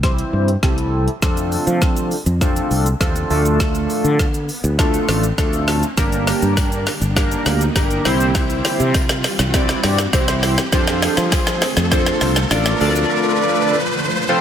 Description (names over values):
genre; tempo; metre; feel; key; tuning
dance-pop; 101 BPM; 4/4; straight; unclear; A4 = 440 Hz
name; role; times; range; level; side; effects
chorused polysynth; accompaniment; 0.0-14.4 s; A3 to D5; -20 LUFS; equal; sidechain pumping, low-pass filter
sustaining fretless electric bass; bass; 0.0-13.0 s; G1 to F3; -20 LUFS; equal; sidechain pumping
deep house drum kit; drums; 0.0-13.1 s; hi-hat, kick drum, shaker, snare drum; -19 LUFS; equal; none
riser; sound effects; 0.0-14.3 s; none; -27 LUFS; equal; none
granular cloud pad; sustained chords; 6.8-14.4 s; D3 to G4; -26 LUFS; right 1 dB; built-in reverb, sidechain pumping, low-pass filter
tambourine; percussion; 6.0-13.1 s; none; -36 LUFS; left 9 dB; none
room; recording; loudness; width
light reverb, digital ambience; none; -15 LUFS; side -9 dB against mid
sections
0.0-14.4 A section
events
build-up 0.0-14.4; drum fill 0.0-13.1; riser 0.0-14.4; filter sweep 0.0-14.4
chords
0.0 C; 1.2 F6; 3.3 Dm; 6.0 Gm; 8.1 C; 10.7 F6; 12.8 Dm